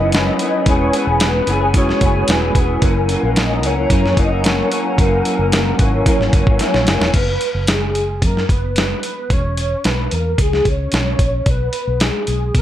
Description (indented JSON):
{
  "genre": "indie pop, bedroom pop",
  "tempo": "111 BPM",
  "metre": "4/4",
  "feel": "straight",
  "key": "unclear",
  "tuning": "A4 = 440 Hz",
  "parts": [
    { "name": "soft octave-layered synth lead", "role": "melody", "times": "0.0-12.6 s", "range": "G#4 to D#5", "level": "-21 LUFS", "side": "equal", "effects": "phaser, ensemble chorus, slapback echo" },
    { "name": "electric guitar through a small old amp", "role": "accompaniment", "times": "0.0-7.2 s", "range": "F#2 to G#4", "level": "-21 LUFS", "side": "left 3 dB", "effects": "ensemble chorus, vibrato effect" },
    { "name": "mellow tine electric piano", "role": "accompaniment", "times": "0.0-7.2 s", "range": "F#3 to G#5", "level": "-23 LUFS", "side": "right 3 dB", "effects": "medium stereo tremolo, cassette tape" },
    { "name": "warbly tape-like pad", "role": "sustained chords", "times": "0.0-7.1 s", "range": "C#5 to B5", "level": "-27 LUFS", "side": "left 2 dB", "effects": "chorus, built-in reverb" },
    { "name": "vintage muted fingered electric bass", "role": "bass", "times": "0.0-12.6 s", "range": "E1 to B2", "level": "-20 LUFS", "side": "equal", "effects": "none" },
    { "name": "dusty soul sampler-style drum kit", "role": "drums", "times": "0.1-12.6 s", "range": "crash cymbal, hi-hat, kick drum, snare drum", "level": "-17 LUFS", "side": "equal", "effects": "none" }
  ],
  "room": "light reverb, digital ambience",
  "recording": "none",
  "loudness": "-14 LUFS",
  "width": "side -12 dB against mid",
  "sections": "0.0-7.1 A section; 7.1-12.6 B section",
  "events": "tine electric piano fill 6.3-7.1; drum fill 6.6-7.1",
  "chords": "0.0 F#7sus4; 0.7 E6; 2.8 F#7; 7.1 F#sus4; 9.3 E5; 11.5 N.C.",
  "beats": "0.13 | 0.67 1.21 1.75 2.29 | 2.83 3.37 3.91 4.45 | 4.99 5.53 6.07 6.61 | 7.14 7.68 8.22 8.77 | 9.31 9.85 10.39 10.93 | 11.47 12.01 12.55"
}